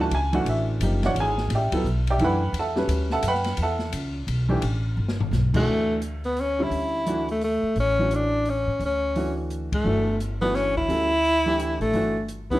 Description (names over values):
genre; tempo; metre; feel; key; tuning
modal jazz; 172 BPM; 3/4; swing 63% on 8ths; D major from 5.7 s; A4 = 440 Hz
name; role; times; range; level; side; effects
warm baby grand piano; accompaniment; 0.0-12.6 s; D3 to B5; -26 LUFS; right 1 dB; none
upright bass; bass; 0.0-12.6 s; F#1 to A2; -26 LUFS; equal; none
open jazz drum kit; drums; 0.1-12.6 s; crash cymbal, hi-hat, kick drum, ride cymbal, snare drum, toms; -33 LUFS; left 2 dB; none
breathy tenor saxophone; melody; 5.6-12.6 s; A3 to E4; -23 LUFS; equal; plate reverb
room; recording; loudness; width
moderate large studio reverb, RT60 0.9 s; none; -21 LUFS; side -16 dB against mid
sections
0.0-5.7 A section; 5.7-12.6 B section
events
drum fill 5.0-5.3; band accent 9.7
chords
0.0 E13sus4; 1.5 A13sus4; 5.7 Dmaj9; 9.9 Gmaj7sus2